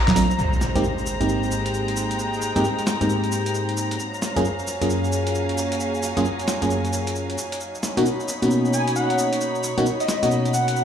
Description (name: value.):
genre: UK garage, two-step garage.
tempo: 133 BPM.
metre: 4/4.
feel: swing 64% on 16ths.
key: Ab major.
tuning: A4 = 441 Hz.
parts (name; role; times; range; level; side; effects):
airy dreamy lead; melody; 0.0-0.4, 8.7-10.8 s; D#5 to Bb5; -25 LUFS; left 1 dB; chorus, ping-pong delay.
dark studio string section; texture; 0.0-10.8 s; Gb3 to B5; -27 LUFS; equal; sidechain pumping.
boom bap sampler-style drum kit; drums; 0.1-10.8 s; congas, handclaps, hi-hat, shaker, snare drum; -28 LUFS; right 1 dB; overdrive.
FM electric piano; stabs; 0.2-10.8 s; Gb2 to Ab4; -23 LUFS; equal; chorus, phaser, cassette tape, ping-pong delay.
impact; sound effects; 0.4-2.2 s; none; -27 LUFS; equal; none.
room: moderate plate reverb, RT60 1.0 s, digital ambience.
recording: played on a big sound system in a bare room, large studio reverb.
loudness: -20 LUFS.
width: side -8 dB against mid.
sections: 0.4-10.8 A section.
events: band accent 0.0; impact 0.4-2.2.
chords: 0.4 Abmaj9; 4.0 Gbmaj9; 7.4 Bmaj9.